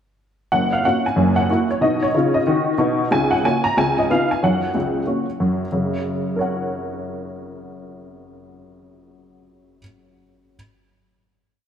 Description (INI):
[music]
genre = jazz, stride piano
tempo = 184 BPM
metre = 4/4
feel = swing 62% on 8ths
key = F# major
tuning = A4 = 440 Hz
[part]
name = honky-tonk upright piano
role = solo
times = 0.5-10.6 s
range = F#1 to A#5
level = -18 LUFS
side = equal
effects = none
[sound]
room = wet plate reverb, RT60 2.5 s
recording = heard from further back in the room, faint mains hum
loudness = -17 LUFS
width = side -8 dB against mid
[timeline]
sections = 0.5-5.7 A section; 5.7-8.3 final chord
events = none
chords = 0.5 F#; 1.2 F#7; 1.8 B; 3.1 F#/C#; 3.8 C#9; 4.4 F#